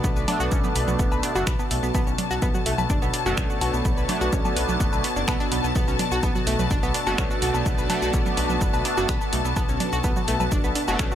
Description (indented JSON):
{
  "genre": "melodic techno",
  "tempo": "126 BPM",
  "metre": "4/4",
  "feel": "straight",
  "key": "B minor",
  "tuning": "A4 = 440 Hz",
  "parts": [
    { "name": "evolving wavetable pad", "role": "sustained chords", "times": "0.0-11.2 s", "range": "B3 to E5", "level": "-32 LUFS", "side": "equal", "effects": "phaser, built-in reverb, sidechain pumping" },
    { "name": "analog pluck", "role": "arpeggios", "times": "0.0-11.2 s", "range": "A3 to B5", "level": "-28 LUFS", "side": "right 1 dB", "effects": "chorus, sidechain pumping, dub echo" },
    { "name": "sync-sweep polysynth", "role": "stabs", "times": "0.0-11.2 s", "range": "A3 to D4", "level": "-31 LUFS", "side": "right 2 dB", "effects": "chorus, sidechain pumping, dub echo" },
    { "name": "dark detuned saw bass", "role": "bass", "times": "0.0-11.1 s", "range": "F#1 to B1", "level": "-28 LUFS", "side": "equal", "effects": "sidechain pumping" },
    { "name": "bowed-like drone", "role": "drone", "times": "0.3-11.2 s", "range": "B2", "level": "-36 LUFS", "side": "equal", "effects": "none" },
    { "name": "electronic kick drum", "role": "drums", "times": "0.0-11.1 s", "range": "none", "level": "-25 LUFS", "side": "equal", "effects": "none" },
    { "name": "punchy analog drum machine", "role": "drums", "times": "0.0-11.2 s", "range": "congas, finger snaps, hi-hat, shaker, woodblock", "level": "-29 LUFS", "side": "right 1 dB", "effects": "none" },
    { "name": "rich studio string section", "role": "texture", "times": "0.0-11.2 s", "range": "A5", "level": "-31 LUFS", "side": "left 7 dB", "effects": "sidechain pumping" }
  ],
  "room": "little or no reverb",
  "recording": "none",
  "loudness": "-21 LUFS",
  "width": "side -10 dB against mid",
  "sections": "0.0-11.2 A section",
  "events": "none",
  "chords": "0.0 Bm7"
}